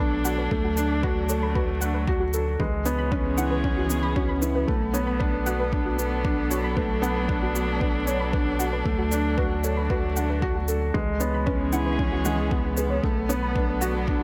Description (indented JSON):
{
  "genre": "piano and strings electronica",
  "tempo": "115 BPM",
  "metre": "4/4",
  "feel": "straight",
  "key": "B dorian",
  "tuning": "A4 = 440 Hz",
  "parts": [
    { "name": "dark string quartet", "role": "sustained chords", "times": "0.0-14.2 s", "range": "E3 to A4", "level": "-34 LUFS", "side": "equal", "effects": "sidechain pumping" },
    { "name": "soft round pluck", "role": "arpeggios", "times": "0.0-14.2 s", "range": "F#4 to B5", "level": "-36 LUFS", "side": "equal", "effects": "analog chorus, sidechain pumping, delay" },
    { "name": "felt-muted upright piano", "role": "riff", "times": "0.0-14.2 s", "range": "G#3 to A4", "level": "-29 LUFS", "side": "equal", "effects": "delay" },
    { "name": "warm sub bass", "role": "bass", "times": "0.0-14.2 s", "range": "B1 to D2", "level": "-31 LUFS", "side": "equal", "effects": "sidechain pumping" },
    { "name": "shaker", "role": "drums", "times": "0.2-13.9 s", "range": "none", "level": "-36 LUFS", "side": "equal", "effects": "studio reverb" },
    { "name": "electronic kick drum", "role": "drums", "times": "0.5-14.2 s", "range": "none", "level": "-30 LUFS", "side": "equal", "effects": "studio reverb" }
  ],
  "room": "light reverb, studio reverb",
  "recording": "none",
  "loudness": "-25 LUFS",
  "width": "mono",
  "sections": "0.0-14.2 A section",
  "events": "none",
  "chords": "0.0 Bm7; 0.5 D; 2.6 C#m7; 4.7 Bm7; 8.9 D; 10.9 C#m7; 13.0 Bm7"
}